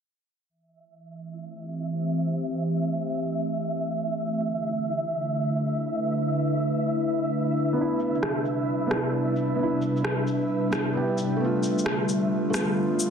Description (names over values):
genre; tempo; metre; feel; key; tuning
future garage; 132 BPM; 4/4; swing 67% on 16ths; A minor; A4 = 440 Hz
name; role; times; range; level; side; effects
warbly tape-like pad; sustained chords; 1.1-13.1 s; C3 to C5; -26 LUFS; equal; chorus, built-in reverb
flickering grainy texture; texture; 1.8-13.1 s; E5; -32 LUFS; right 2 dB; built-in reverb
felt-muted upright piano; accompaniment; 7.7-13.1 s; A3 to G4; -28 LUFS; right 2 dB; tape echo
electronic shaker and rim click; drums; 8.0-13.1 s; none; -30 LUFS; left 1 dB; overdrive
room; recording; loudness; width
light reverb; dense, heavily limited modern master, low-pass filter; -24 LUFS; side -7 dB against mid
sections
0.5-13.1 A section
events
filter sweep on ambient pad 0.5-13.1; filter sweep 0.5-13.1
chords
0.5 Am7; 4.1 E7sus4; 7.8 Cmaj7; 11.4 G7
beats
| 0.50 0.95 1.41 1.86 | 2.32 2.77 3.23 3.68 | 4.13 4.59 5.04 5.50 | 5.95 6.41 6.86 7.32 | 7.77 8.22 8.68 9.13 | 9.59 10.04 10.50 10.95 | 11.41 11.86 12.32 12.77